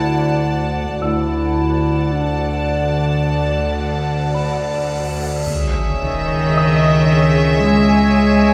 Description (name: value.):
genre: cinematic, suspense film score.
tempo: 54 BPM.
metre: 4/4.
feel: straight.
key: unclear.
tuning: A4 = 440 Hz.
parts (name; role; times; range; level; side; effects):
clear studio violin section; melody; 0.0-8.5 s; E5 to A5; -29 LUFS; equal; none.
dark studio violin section; second line; 0.0-8.5 s; D5 to G#5; -27 LUFS; equal; none.
warm clarinet; second line; 0.0-4.3 s; D4 to E4; -26 LUFS; equal; none.
glass harmonica; sustained chords; 0.0-8.5 s; C#4 to D#6; -28 LUFS; equal; none.
rich studio double bass section; bass; 0.0-8.5 s; C#2 to D2; -24 LUFS; equal; none.
warm studio cello section; bass; 0.0-8.5 s; D2 to G#3; -20 LUFS; equal; none.
cymbal swell and sub drop; sound effects; 4.1-8.5 s; none; -29 LUFS; equal; none.
dark grand piano; texture; 1.0-8.5 s; B5 to E6; -31 LUFS; equal; none.
warm studio viola section; accompaniment; 5.5-8.5 s; G#4 to C#5; -25 LUFS; equal; none.
room: wet recital hall reverb, RT60 1.4 s.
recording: heard from further back in the room.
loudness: -17 LUFS.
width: mono.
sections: 0.0-5.5 A section; 5.5-8.5 A section.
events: cymbal swell 4.1-5.5; impact 5.5-8.5.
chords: 0.0 D; 5.5 C#madd9.